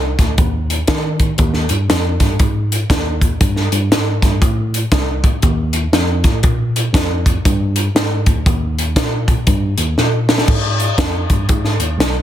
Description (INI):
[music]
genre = uptempo gospel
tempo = 119 BPM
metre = 4/4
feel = swing 62% on 8ths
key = Ab major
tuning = A4 = 443 Hz
[part]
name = mellow tine electric piano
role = bass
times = 0.0-12.2 s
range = Cb2 to Eb3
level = -18 LUFS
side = equal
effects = medium stereo tremolo
[part]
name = crisp fusion drum kit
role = drums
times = 0.2-12.1 s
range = crash cymbal, hi-hat, kick drum, snare drum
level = -15 LUFS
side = equal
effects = none
[sound]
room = little or no reverb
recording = dense, heavily limited modern master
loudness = -13 LUFS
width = side -11 dB against mid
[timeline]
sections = 0.0-10.5 A section; 10.5-12.2 B section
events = drum fill 10.0-10.5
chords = none